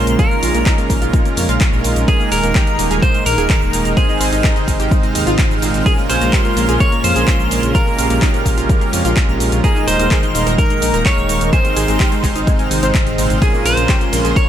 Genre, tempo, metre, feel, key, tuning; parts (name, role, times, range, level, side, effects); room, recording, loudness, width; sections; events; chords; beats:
progressive house; 127 BPM; 4/4; straight; Bb minor; A4 = 440 Hz
semi-hollow electric guitar; melody; 0.0-14.5 s; Ab4 to Db5; -22 LUFS; right 1 dB; dub echo
airy dreamy lead; second line; 0.0-14.5 s; Ab5 to Db6; -26 LUFS; left 1 dB; chorus, sidechain pumping, tape echo
warm analog pad; sustained chords; 0.0-14.5 s; Bb2 to G4; -24 LUFS; left 1 dB; chorus, sidechain pumping
analog pluck; arpeggios; 0.0-14.4 s; Ab3 to C5; -24 LUFS; equal; lush chorus, sidechain pumping, tape echo
soft supersaw; stabs; 0.0-14.5 s; Ab2 to C5; -21 LUFS; right 4 dB; sidechain pumping, tape echo
dark detuned saw bass; bass; 0.0-14.3 s; Eb1 to F2; -20 LUFS; equal; tube saturation, sidechain pumping
twinkling granular texture; texture; 0.0-14.5 s; F6 to Bb6; -28 LUFS; right 1 dB; built-in reverb, sidechain pumping
deep house drum kit; drums; 0.1-14.5 s; cabasa, handclaps, hi-hat, ride cymbal; -23 LUFS; equal; studio reverb, sidechain pumping on hats, sidechain pumping on perc, sidechain pumping on cymbals
electronic kick drum; drums; 0.2-14.5 s; -15 LUFS; equal; overdrive, studio reverb
little or no reverb; -12 LUFS; side -10 dB against mid
0.0-14.5 A section
0.0 Bbm7; 2.1 Ebsus4; 4.0 Ab; 5.9 Bbm7; 9.6 Ebsus4; 11.5 Ab; 13.4 Bbm7
| 0.19 0.66 1.14 1.61 | 2.08 2.55 3.02 3.50 | 3.97 4.44 4.91 5.39 | 5.86 6.33 6.80 7.28 | 7.75 8.22 8.69 9.17 | 9.64 10.11 10.58 11.06 | 11.53 12.00 12.47 12.95 | 13.42 13.89 14.36